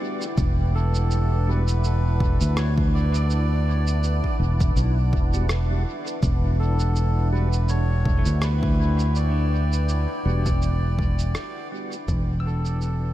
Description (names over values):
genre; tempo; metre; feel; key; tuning
ambient dub; 82 BPM; 4/4; swing 56% on 16ths; E minor; A4 = 443 Hz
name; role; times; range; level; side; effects
deep dark ambient pad; sustained chords; 0.0-13.1 s; D4 to B5; -32 LUFS; equal; chorus, built-in reverb
pedal steel guitar; arpeggios; 0.0-13.1 s; A3 to E6; -40 LUFS; left 4 dB; none
percussive tonewheel organ; stabs; 0.0-12.0 s; G3 to F#4; -38 LUFS; right 1 dB; slow rotary speaker, dub echo
electronic cabasa and rim click; drums; 0.2-13.0 s; none; -36 LUFS; right 1 dB; dub echo
fingered electric bass; bass; 0.4-13.1 s; E1 to D2; -21 LUFS; equal; tube saturation
electronic kick drum; drums; 0.4-12.2 s; none; -25 LUFS; equal; overdrive
melodica; melody; 0.8-13.1 s; A4 to D5; -33 LUFS; equal; dub echo
room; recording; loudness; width
light reverb; vinyl crackle; -20 LUFS; side -14 dB against mid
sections
0.0-13.1 A section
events
fade-out 10.1-13.1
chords
0.0 Em7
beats
| 0.38 1.11 1.84 2.57 | 3.30 4.03 4.77 5.50 | 6.23 6.96 7.69 8.42 | 9.16 9.89 10.62 11.35 | 12.08 12.81